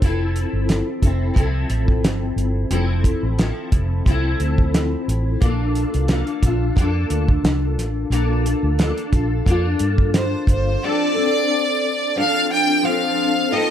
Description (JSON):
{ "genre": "indie pop, bedroom pop", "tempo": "89 BPM", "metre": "4/4", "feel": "swing 55% on 16ths", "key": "F major", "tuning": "A4 = 441 Hz", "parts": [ { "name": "picked steel-string acoustic guitar", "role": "accompaniment", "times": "0.0-13.7 s", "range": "F3 to A4", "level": "-22 LUFS", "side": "left 2 dB", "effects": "ensemble chorus, vibrato effect, plate reverb" }, { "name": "vintage muted fingered electric bass", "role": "bass", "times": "0.0-10.7 s", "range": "F1 to G2", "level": "-21 LUFS", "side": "equal", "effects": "none" }, { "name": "cloth-damped thuddy drum kit", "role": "drums", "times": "0.0-10.7 s", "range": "hi-hat, kick drum, snare drum", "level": "-19 LUFS", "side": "equal", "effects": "none" }, { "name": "clear fiddle", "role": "melody", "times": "10.2-13.7 s", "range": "C5 to G5", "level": "-19 LUFS", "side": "equal", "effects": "analog chorus, plate reverb" } ], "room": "light reverb", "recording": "none", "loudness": "-17 LUFS", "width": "side -10 dB against mid", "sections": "0.0-10.8 A section; 10.8-13.7 B section", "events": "none", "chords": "0.0 Fmaj7; 5.4 Bbmaj7; 10.8 F6" }